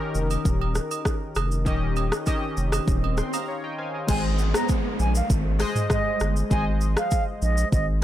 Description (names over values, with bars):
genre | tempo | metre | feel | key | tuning
afrobeats | 99 BPM | 4/4 | straight | Ab major | A4 = 440 Hz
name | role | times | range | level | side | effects
warm analog keys | accompaniment | 0.0-8.0 s | Eb3 to C6 | -29 LUFS | left 2 dB | chorus
swell and downlifter | sound effects | 2.6-8.0 s | none | -34 LUFS | right 2 dB | none
saturated sub bass | bass | 0.1-8.0 s | Eb1 to Bb1 | -24 LUFS | equal | none
afro-pop drum kit | drums | 0.1-7.9 s | crash cymbal, hi-hat, kick drum, rim click, shaker, toms | -26 LUFS | equal | none
agogo bells | percussion | 0.3-3.5 s | none | -34 LUFS | right 11 dB | none
silver concert flute | melody | 4.1-7.9 s | Eb5 to Bb5 | -29 LUFS | right 2 dB | none
room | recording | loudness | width
little or no reverb | none | -22 LUFS | side -12 dB against mid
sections
0.0-4.1 A section; 4.1-8.0 B section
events
swell 2.6-4.1; synth keys fill 3.2-4.1; break 3.5-4.1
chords
0.0 Eb7; 4.1 Ab